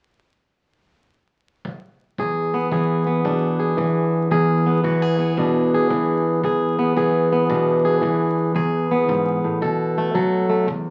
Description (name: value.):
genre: acoustic country blues, solo or duo.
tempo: 113 BPM.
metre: 4/4.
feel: swing 66% on 8ths.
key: E mixolydian.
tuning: A4 = 440 Hz.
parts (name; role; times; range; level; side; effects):
kick drum; drums; 1.6-10.8 s; none; -34 LUFS; equal; none.
fingerpicked plugged-in swing-style acoustic guitar; melody; 2.2-10.9 s; E2 to A4; -20 LUFS; equal; none.
room: moderate club reverb, RT60 0.6 s.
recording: very old 78 rpm record, vinyl crackle.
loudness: -20 LUFS.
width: mono.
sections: 0.0-2.2 A section; 2.2-10.7 B section.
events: none.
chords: 0.0 N.C.; 2.2 E7; 9.6 B5.